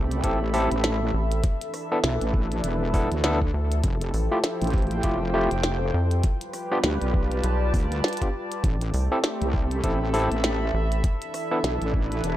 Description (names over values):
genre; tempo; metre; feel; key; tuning
glitch hop; 100 BPM; 4/4; swing 59% on 16ths; A minor; A4 = 441 Hz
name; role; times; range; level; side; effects
warm analog pad; sustained chords; 0.0-12.4 s; E3 to B4; -32 LUFS; equal; chorus, vintage 12-bit sampler grit, sidechain pumping
wobble bass; bass; 0.0-12.4 s; E1 to D2; -26 LUFS; equal; chorus
warbly tape-like pad; texture; 0.0-12.4 s; F3 to B5; -32 LUFS; equal; chorus, built-in reverb, sidechain pumping
glitchy drum kit; drums; 0.1-12.4 s; hi-hat, rim click, snare drum; -28 LUFS; equal; none
overdriven tine electric piano; stabs; 0.2-11.6 s; A3 to A4; -28 LUFS; equal; sidechain pumping, tape echo
electronic kick drum; drums; 0.2-12.1 s; none; -24 LUFS; equal; none
rubbery square bass; bass; 1.1-11.0 s; A1 to F2; -23 LUFS; equal; none
room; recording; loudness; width
digital ambience; dry, gritty hardware recording; -22 LUFS; side -13 dB against mid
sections
0.0-12.4 A section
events
none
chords
0.0 Am7; 1.4 E7sus4; 3.8 Fmaj9; 6.2 G7; 8.6 Am7; 11.0 E7sus4